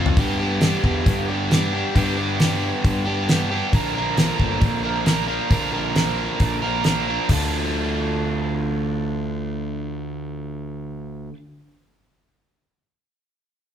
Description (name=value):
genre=classic rock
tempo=134 BPM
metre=4/4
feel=straight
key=D minor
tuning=A4 = 440 Hz
part: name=overdriven electric guitar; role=riff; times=0.0-11.4 s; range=G2 to Bb4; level=-23 LUFS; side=right 1 dB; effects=none
part: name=fuzz picked electric bass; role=bass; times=0.0-11.3 s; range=G1 to G2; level=-28 LUFS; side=equal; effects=overdrive
part: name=damped 70s drum kit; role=drums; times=0.1-7.4 s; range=hi-hat, kick drum, snare drum, toms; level=-20 LUFS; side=equal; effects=none
room=moderate large studio reverb, RT60 1.3 s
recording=band playing live in one room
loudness=-19 LUFS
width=side -9 dB against mid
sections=0.2-7.3 A section; 7.3-10.9 B section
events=drum fill 0.0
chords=0.2 G; 3.7 Bb; 7.3 Dm